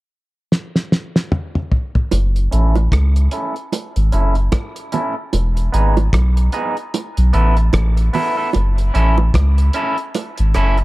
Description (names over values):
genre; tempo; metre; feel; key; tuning
dub reggae; 75 BPM; 4/4; swing 59% on 16ths; F# dorian; A4 = 440 Hz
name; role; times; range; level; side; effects
cloth-damped thuddy drum kit; drums; 0.5-10.8 s; hi-hat, kick drum, rim click, snare drum, toms; -19 LUFS; equal; none
soft dub sub bass; bass; 2.1-10.8 s; E1 to C#2; -14 LUFS; equal; none
bongos; percussion; 2.1-10.4 s; none; -25 LUFS; right 6 dB; dub echo
electric guitar at the edge of break-up; accompaniment; 2.5-10.8 s; B3 to A4; -22 LUFS; right 1 dB; low-pass filter, dub echo
room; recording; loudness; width
studio reverb; dark, warm production; -15 LUFS; side -19 dB against mid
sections
0.0-2.1 A section; 2.1-10.8 B section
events
drum fill 0.5-2.1; filter sweep on clean electric guitar 2.1-10.8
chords
0.0 N.C.; 2.1 F#m7; 5.3 Emaj7; 6.9 B7sus4; 8.5 F#m7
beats
0.52 1.32 | 2.12 2.92 3.72 4.53 | 5.33 6.13 6.93 7.74 | 8.54 9.34 10.15